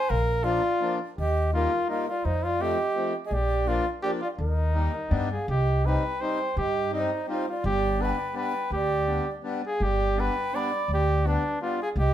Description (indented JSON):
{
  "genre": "alpine folk, alpine dance band",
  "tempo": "167 BPM",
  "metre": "3/4",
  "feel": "swing 55% on 8ths",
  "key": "Eb major",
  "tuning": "A4 = 441 Hz",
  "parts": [
    { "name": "clear flugelhorn", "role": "melody", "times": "0.0-12.1 s", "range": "D4 to D5", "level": "-27 LUFS", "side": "equal", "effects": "none" },
    { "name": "mellow hollow wooden flute", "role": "second line", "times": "0.0-12.1 s", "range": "Bb4 to B5", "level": "-33 LUFS", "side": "right 2 dB", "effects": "none" },
    { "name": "upright bass", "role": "bass", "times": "0.1-12.1 s", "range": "G1 to G2", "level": "-26 LUFS", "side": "equal", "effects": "none" },
    { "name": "accordion", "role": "accompaniment", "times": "0.4-11.8 s", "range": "F3 to Eb4", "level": "-32 LUFS", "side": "left 3 dB", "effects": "none" }
  ],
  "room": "wet studio reverb, RT60 0.7 s",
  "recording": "band playing live in one room",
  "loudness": "-24 LUFS",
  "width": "side -11 dB against mid",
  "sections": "0.0-5.5 A section; 5.5-12.1 B section",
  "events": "none",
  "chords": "0.1 Bb; 1.2 Ebadd9; 2.2 F7; 3.3 Bb; 4.4 Eb; 5.1 G7; 5.5 Cm; 7.6 G"
}